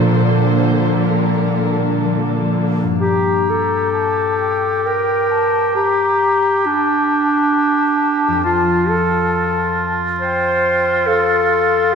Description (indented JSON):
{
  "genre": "cinematic",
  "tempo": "61-70 BPM",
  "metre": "3/4",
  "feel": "rubato",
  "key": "unclear",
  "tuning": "A4 = 441 Hz",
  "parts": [
    { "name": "muted studio violin section", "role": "melody", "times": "0.0-2.0 s", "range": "Bb4 to C5", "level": "-27 LUFS", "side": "left 1 dB", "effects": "none" },
    { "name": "muted studio violin section", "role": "second line", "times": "0.0-2.8 s", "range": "D4 to A4", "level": "-24 LUFS", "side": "left 3 dB", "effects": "none" },
    { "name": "muted studio viola section", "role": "accompaniment", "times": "0.0-2.8 s", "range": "D3 to Bb3", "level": "-21 LUFS", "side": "right 3 dB", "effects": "none" },
    { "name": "concert harp", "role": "arpeggios", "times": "0.0-11.9 s", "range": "F2 to C5", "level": "-21 LUFS", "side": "left 4 dB", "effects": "none" },
    { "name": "muted studio cello section", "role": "bass", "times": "0.0-2.8 s", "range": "Bb2", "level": "-21 LUFS", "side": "right 7 dB", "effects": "none" },
    { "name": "clear clarinet", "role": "second line", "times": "3.0-11.9 s", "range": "D4 to C5", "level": "-17 LUFS", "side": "equal", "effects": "none" },
    { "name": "mellow hollow silver concert flute", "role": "second line", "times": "3.0-11.9 s", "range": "F5 to Bb5", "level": "-21 LUFS", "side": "left 4 dB", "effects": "none" },
    { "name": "warm oboe", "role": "second line", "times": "3.0-11.9 s", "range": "F4 to G4", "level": "-19 LUFS", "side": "right 3 dB", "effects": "none" }
  ],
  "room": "wet scoring stage reverb, RT60 1.7 s",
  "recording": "minimal, uncompressed stereo recording",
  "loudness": "-14 LUFS",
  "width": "side -6 dB against mid",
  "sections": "0.0-3.0 A section; 3.0-11.9 B section",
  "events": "none",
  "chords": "0.0 Bbmaj7; 3.0 Gmadd9; 8.5 F",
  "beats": "| 0.11 1.08 2.05 | 3.02 3.95 4.85 | 5.76 6.67 7.57 | 8.45 9.35 10.22 | 11.09 11.95"
}